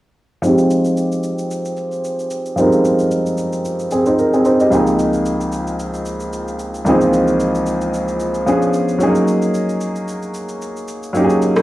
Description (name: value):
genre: amapiano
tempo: 112 BPM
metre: 4/4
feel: swing 55% on 16ths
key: F minor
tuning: A4 = 439 Hz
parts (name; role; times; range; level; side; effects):
- clear grand piano; accompaniment; 0.4-11.6 s; Db2 to Eb5; -15 LUFS; equal; low-pass filter, cassette tape
- electronic shaker and rim click; drums; 0.4-11.6 s; none; -30 LUFS; equal; overdrive, cassette tape
room: light reverb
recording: home recording on cassette, studio reverb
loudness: -15 LUFS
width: side -16 dB against mid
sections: 0.4-11.6 A section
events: filter sweep on grand piano 0.4-11.6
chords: 0.4 Fm9; 4.7 Dbmaj13; 8.5 Db7b9; 9.0 Gb69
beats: | 0.43 0.97 1.51 2.04 | 2.58 3.11 3.65 4.18 | 4.72 5.26 5.79 6.33 | 6.86 7.40 7.93 8.47 | 9.01 9.54 10.08 10.61 | 11.15